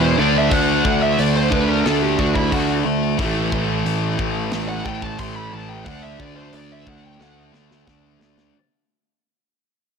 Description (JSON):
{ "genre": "heavy metal", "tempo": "90 BPM", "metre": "4/4", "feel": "straight", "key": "unclear", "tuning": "A4 = 436 Hz", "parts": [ { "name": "high-gain lead guitar", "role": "melody", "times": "0.0-7.4 s", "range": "E4 to C6", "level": "-24 LUFS", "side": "right 2 dB", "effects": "distortion, tape echo" }, { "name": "heavy high-gain guitar", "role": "riff", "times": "0.0-8.5 s", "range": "E2 to D4", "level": "-24 LUFS", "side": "left 15 dB", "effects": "distortion" }, { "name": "sludgy distorted guitar", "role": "riff", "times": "0.0-8.5 s", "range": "E2 to D4", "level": "-23 LUFS", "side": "right 14 dB", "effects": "overdrive" }, { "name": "fuzz picked electric bass", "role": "bass", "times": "0.0-8.5 s", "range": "A1 to E2", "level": "-23 LUFS", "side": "left 2 dB", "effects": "overdrive" }, { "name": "tight metal drum kit", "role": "drums", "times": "0.5-8.5 s", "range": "hi-hat, kick drum, snare drum", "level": "-27 LUFS", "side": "left 1 dB", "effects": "soft clipping on kick" } ], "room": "light reverb, small room ambience", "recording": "blown-out, overdriven recording, overdrive", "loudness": "-17 LUFS", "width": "side -6 dB against mid", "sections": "0.0-8.5 A section", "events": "fade-out 0.0-8.5; lead electric guitar solo 0.0-8.5; drum fill 7.2-8.5", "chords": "0.2 D5; 3.2 A5; 5.9 D5", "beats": "| 0.52 1.18 1.85 2.52 | 3.19 3.86 4.53 5.20 | 5.87 6.54 7.21 7.88" }